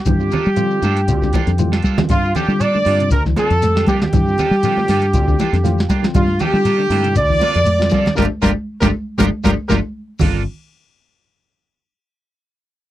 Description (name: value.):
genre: afrobeat.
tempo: 118 BPM.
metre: 4/4.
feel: swing 55% on 16ths.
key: G dorian.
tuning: A4 = 440 Hz.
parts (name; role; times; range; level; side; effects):
clear horn section; melody; 0.0-9.8 s; F4 to D5; -19 LUFS; equal; none.
brilliant trumpet; second line; 0.0-9.8 s; F4 to D5; -27 LUFS; right 3 dB; none.
semi-hollow electric guitar; arpeggios; 0.1-10.4 s; G2 to G3; -24 LUFS; left 8 dB; none.
fingered electric bass; bass; 0.1-10.4 s; G1 to G3; -18 LUFS; equal; none.
soft vintage rhythm box; drums; 0.1-10.3 s; crash cymbal, hi-hat, kick drum, snare drum; -20 LUFS; equal; none.
congas; percussion; 0.1-10.3 s; none; -23 LUFS; right 3 dB; none.
shekere; percussion; 0.1-10.3 s; none; -25 LUFS; left 3 dB; none.
tine electric piano; accompaniment; 0.2-10.4 s; D3 to G5; -26 LUFS; right 1 dB; overdrive, fast stereo tremolo.
clean electric guitar; stabs; 0.3-10.4 s; Bb3 to A4; -26 LUFS; right 10 dB; analog chorus.
room: little or no reverb.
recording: dry, close 1970s-style studio recording.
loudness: -14 LUFS.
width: side -14 dB against mid.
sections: 0.0-10.2 A section; 10.2-12.2 B section.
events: drum fill 1.6-2.1; tine electric piano fill 5.4-6.1; band accent 8.2-10.2.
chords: 0.0 Gm9.